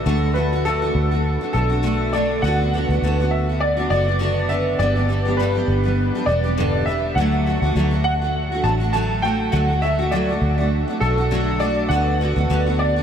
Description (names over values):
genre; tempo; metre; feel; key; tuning
pop; 101 BPM; 4/4; swing 55% on 16ths; D major; A4 = 440 Hz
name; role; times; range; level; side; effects
warm upright piano; melody; 0.0-13.0 s; A4 to A5; -23 LUFS; equal; analog chorus, diffuse ambient delay
picked steel-string acoustic guitar; accompaniment; 0.0-13.0 s; G2 to G4; -22 LUFS; right 1 dB; double-tracked left and right
vintage muted fingered electric bass; bass; 0.0-13.0 s; E1 to D2; -21 LUFS; equal; none
room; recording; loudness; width
moderate huge ambient reverb, RT60 6.3 s; dreamy mix soaked in reverb; -17 LUFS; side -8 dB against mid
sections
0.0-13.0 A section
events
none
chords
0.0 D; 2.4 Bm/D; 4.8 G; 7.2 D; 11.9 Bm/D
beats
| 0.06 0.65 1.24 1.83 | 2.42 3.02 3.61 4.20 | 4.79 5.38 5.98 6.57 | 7.16 7.75 8.35 8.94 | 9.53 10.12 10.72 11.31 | 11.90 12.49